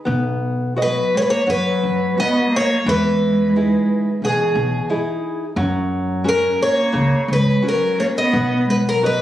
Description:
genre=fado-style ballad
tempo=87 BPM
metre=4/4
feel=rubato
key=B major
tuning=A4 = 440 Hz
part: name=nylon-string guitar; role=accompaniment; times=0.1-9.2 s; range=B2 to D#5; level=-24 LUFS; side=left 2 dB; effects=none
part: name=upright bass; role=bass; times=0.1-9.2 s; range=B1 to F#2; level=-23 LUFS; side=equal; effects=none
part: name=picked twelve-string acoustic guitar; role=melody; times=0.8-9.2 s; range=G#4 to D#5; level=-19 LUFS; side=equal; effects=none
part: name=dark cello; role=second line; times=0.8-9.2 s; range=E3 to B3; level=-20 LUFS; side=right 1 dB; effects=none
room=light reverb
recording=recorded on a phone in the room, studio reverb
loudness=-16 LUFS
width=side -12 dB against mid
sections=0.1-9.2 A section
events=none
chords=0.1 B; 2.9 Emaj7; 5.6 F#; 8.3 B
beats=| 0.07 0.79 1.49 2.19 | 2.88 3.56 4.23 4.90 | 5.57 6.25 6.94 7.64 | 8.33 9.03

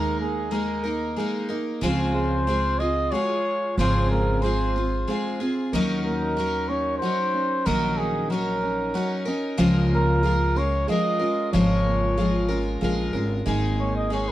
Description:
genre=acoustic folk duo or small band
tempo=93 BPM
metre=3/4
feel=straight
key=Db major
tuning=A4 = 441 Hz
part: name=trumpet with cup mute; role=melody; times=0.0-14.3 s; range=Ab4 to Eb5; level=-26 LUFS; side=right 1 dB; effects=none
part: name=picked twelve-string acoustic guitar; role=accompaniment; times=0.0-14.3 s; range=Db3 to Bb4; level=-25 LUFS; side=left 2 dB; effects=none
part: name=felt-muted upright piano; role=arpeggios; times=0.0-14.3 s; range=Eb3 to Ab4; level=-30 LUFS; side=right 5 dB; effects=none
part: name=upright bass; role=bass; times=0.0-14.3 s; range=Ab1 to Eb2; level=-26 LUFS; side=equal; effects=none
room=little or no reverb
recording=dry, close 1970s-style studio recording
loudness=-21 LUFS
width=side -14 dB against mid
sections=0.0-13.5 A section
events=none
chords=0.0 Absus2; 1.8 Dbmaj7; 5.7 Ebm7; 9.6 Db6; 13.5 Absus2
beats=0.53 1.18 | 1.83 2.48 3.13 | 3.78 4.43 5.08 | 5.72 6.37 7.02 | 7.66 8.31 8.95 | 9.60 10.24 10.88 | 11.53 12.17 12.82 | 13.46 14.11

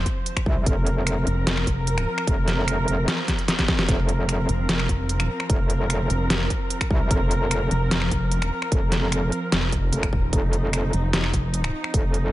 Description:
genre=heavy wobble dubstep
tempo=149 BPM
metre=4/4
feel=half-time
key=unclear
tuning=A4 = 440 Hz
part: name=muted studio string section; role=sustained chords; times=0.0-12.3 s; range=F3 to C5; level=-28 LUFS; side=right 1 dB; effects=sidechain pumping
part: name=pulsing pluck wobble bass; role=bass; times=0.0-2.1, 4.5-11.7 s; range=Eb1 to F1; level=-23 LUFS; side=equal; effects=chorus, overdrive
part: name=dubstep drum kit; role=drums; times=0.1-12.2 s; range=finger snaps, hi-hat, snare drum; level=-26 LUFS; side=equal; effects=none
part: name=electronic kick drum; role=drums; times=0.1-12.0 s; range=none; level=-24 LUFS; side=equal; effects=none
part: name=metallic wobble bass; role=bass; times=0.5-12.3 s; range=F1 to C2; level=-23 LUFS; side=equal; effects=chorus, overdrive
room=digital ambience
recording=nothing above 10.9 kHz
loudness=-20 LUFS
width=side -16 dB against mid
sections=0.0-12.3 A section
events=drum fill 3.3-3.9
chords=0.0 F5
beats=0.26 | 0.66 1.07 1.47 1.87 | 2.27 2.68 3.08 3.48 | 3.88 4.29 4.69 5.09 | 5.50 5.90 6.30 6.70 | 7.11 7.51 7.91 8.31 | 8.72 9.12 9.52 9.93 | 10.33 10.73 11.13 11.54 | 11.94

